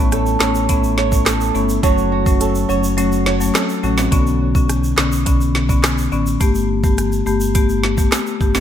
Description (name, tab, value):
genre	dancehall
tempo	105 BPM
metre	4/4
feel	straight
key	unclear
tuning	A4 = 440 Hz
part	marimba with medium mallets	accompaniment	0.0-8.6 s	D3 to G4	-19 LUFS	left 5 dB	sidechain pumping
part	flamenco guitar	arpeggios	0.0-4.7 s	F#3 to C#5	-21 LUFS	right 7 dB	ping-pong delay
part	sub bass with octave	bass	0.0-8.6 s	F#1 to B1	-20 LUFS	right 1 dB	none
part	island pop drum kit	drums	0.1-8.6 s	handclaps, hi-hat, kick drum, rim click, snare drum	-18 LUFS	equal	none
part	tube shaker and timbales	percussion	0.1-8.6 s	none	-29 LUFS	right 4 dB	none
room	light reverb, small room ambience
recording	bright 1980s-style digital production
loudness	-14 LUFS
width	side -10 dB against mid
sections	0.0-4.1 A section; 4.1-8.6 A section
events	kick muted 3.0-4.1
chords	0.0 Aadd9; 1.8 F#m; 4.1 Bmadd9; 6.4 Gadd9